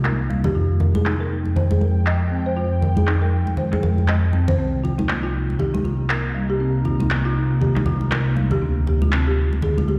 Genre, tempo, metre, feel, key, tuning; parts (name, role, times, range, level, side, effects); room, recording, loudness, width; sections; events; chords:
afro house; 119 BPM; 4/4; swing 59% on 16ths; C minor; A4 = 440 Hz
ethereal airy pad; sustained chords; 0.0-10.0 s; C3 to G5; -27 LUFS; equal; ensemble chorus, built-in reverb
folk marimba with medium mallets; arpeggios; 0.0-10.0 s; G3 to Eb5; -29 LUFS; equal; low-pass filter, digital delay
dark detuned saw bass; bass; 0.0-10.0 s; C2 to F2; -24 LUFS; equal
electronic handclaps; drums; 0.0-9.2 s; -31 LUFS; equal; low-pass filter on snare, low-pass filter on perc, low-pass filter on toms, low-pass filter on cymbals
congas; percussion; 0.0-10.0 s; -27 LUFS; equal
moderate lush hall reverb, RT60 2.1 s; played on a big sound system in a bare room, stone room reverb; -20 LUFS; mono
0.0-10.0 A section
filter sweep on ambient pad 0.0-10.0
0.0 Cm7; 0.6 Fmadd9; 4.6 Cm7; 8.6 Ddim